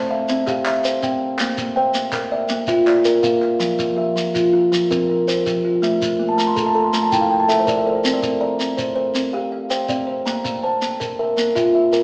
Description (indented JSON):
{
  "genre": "southern african traditional, mbira-style interlocking cycle",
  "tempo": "108 BPM (dotted quarters)",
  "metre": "12/8",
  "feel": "straight",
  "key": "F major",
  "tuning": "A4 = 440 Hz",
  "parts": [
    { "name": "kalimba", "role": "arpeggios", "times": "0.0-12.0 s", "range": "F3 to G5", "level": "-21 LUFS", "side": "equal", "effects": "none" },
    { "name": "kalimba", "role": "arpeggios", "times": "0.0-12.0 s", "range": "F3 to C6", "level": "-18 LUFS", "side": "equal", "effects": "none" },
    { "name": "shekere", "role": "percussion", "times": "0.3-12.0 s", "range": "none", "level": "-27 LUFS", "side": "equal", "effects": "none" },
    { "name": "group handclap", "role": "percussion", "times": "0.5-3.5 s", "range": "none", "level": "-29 LUFS", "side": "equal", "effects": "none" }
  ],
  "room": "wet large studio reverb, RT60 1.3 s",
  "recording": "band playing live in one room, small speaker sound",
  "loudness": "-16 LUFS",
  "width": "side -35 dB against mid",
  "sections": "0.0-3.6 A section; 3.6-12.0 A section",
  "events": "kalimba fill 6.1-8.0",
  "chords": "0.0 C; 1.4 Bb; 3.6 F5; 5.8 A5; 8.0 C5; 10.3 Bb5"
}